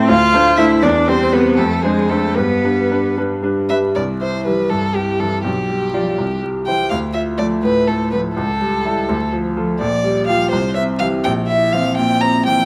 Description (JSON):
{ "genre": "quick classical-period movement for piano trio", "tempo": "82 BPM (dotted quarters)", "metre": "6/8", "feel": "rubato", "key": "C major", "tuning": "A4 = 438 Hz", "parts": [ { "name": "clear cello", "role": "second line", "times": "0.0-12.7 s", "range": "E3 to F4", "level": "-22 LUFS", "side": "equal", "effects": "none" }, { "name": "bright grand piano", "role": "accompaniment", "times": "0.0-12.7 s", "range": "Bb1 to D5", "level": "-20 LUFS", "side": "equal", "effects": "none" }, { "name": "rich violin", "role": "melody", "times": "0.1-12.7 s", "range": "G4 to Bb5", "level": "-22 LUFS", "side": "equal", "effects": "none" } ], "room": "moderate recital hall reverb, RT60 1.5 s", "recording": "close, detailed microphones, vinyl crackle", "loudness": "-17 LUFS", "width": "mono", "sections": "0.0-4.0 A section; 4.0-12.7 A section", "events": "none", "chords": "0.1 Dm7; 0.8 C/E; 1.6 Dm7b5/F; 2.4 G; 4.0 C; 5.4 G7/B; 6.2 C; 6.9 Dm; 8.4 A7/C#; 9.1 Dm; 9.8 Gm7/Bb; 10.5 C; 11.3 C7/Bb", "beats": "0.10 | 0.83 1.58 | 2.37 3.17 | 3.96 4.71 | 5.45 6.18 | 6.91 7.64 | 8.37 9.09 | 9.81 10.53 | 11.26 11.98" }